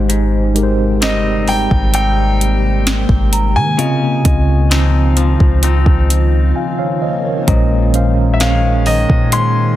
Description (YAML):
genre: contemporary R&B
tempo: 65 BPM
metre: 4/4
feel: straight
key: unclear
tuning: A4 = 438 Hz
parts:
  - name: mellow tine electric piano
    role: accompaniment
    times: 0.0-9.8 s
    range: Bb2 to Ab5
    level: -18 LUFS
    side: right 1 dB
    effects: medium stereo tremolo
  - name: granular cloud pad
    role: sustained chords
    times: 0.0-9.8 s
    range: C3 to C5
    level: -24 LUFS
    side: equal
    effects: built-in reverb, sidechain pumping
  - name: direct-recorded clean electric guitar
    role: arpeggios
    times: 0.0-9.8 s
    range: Ab2 to G4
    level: -23 LUFS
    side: left 6 dB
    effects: spring reverb, tape echo
  - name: soft 808-style bass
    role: bass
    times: 0.0-9.8 s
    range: G1 to Eb3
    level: -14 LUFS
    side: equal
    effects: none
  - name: smooth R&B drum kit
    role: drums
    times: 0.1-9.5 s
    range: hi-hat, kick drum, snare drum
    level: -16 LUFS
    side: equal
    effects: overdrive
  - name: clear concert grand piano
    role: melody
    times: 1.0-9.8 s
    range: Eb5 to C6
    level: -19 LUFS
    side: equal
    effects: none
  - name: celesta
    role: texture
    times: 1.5-4.2 s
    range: Bb5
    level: -27 LUFS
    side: right 4 dB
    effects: none
room: little or no reverb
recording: dense, heavily limited modern master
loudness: -11 LUFS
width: side -14 dB against mid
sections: 0.0-9.8 A section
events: break 6.6-7.5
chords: 0.0 Abmaj7; 3.8 Dbmaj9; 7.5 Bbm11